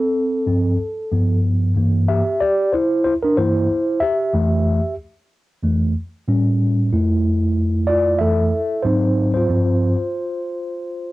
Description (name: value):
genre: hip hop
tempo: 93 BPM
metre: 4/4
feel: swing 57% on 16ths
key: unclear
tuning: A4 = 440 Hz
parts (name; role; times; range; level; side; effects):
- mellow tine electric piano; solo; 0.0-11.1 s; F2 to E5; -16 LUFS; equal; medium stereo tremolo, cassette tape
room: moderate studio reverb, RT60 0.6 s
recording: home recording on cassette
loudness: -16 LUFS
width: side -18 dB against mid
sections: 0.0-11.1 A section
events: tine electric piano solo 0.0-11.1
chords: 0.0 G7sus4; 1.8 C7/G; 4.3 Fmaj9; 6.3 A7; 6.9 Fmaj7; 8.9 G#7; 9.5 G7sus4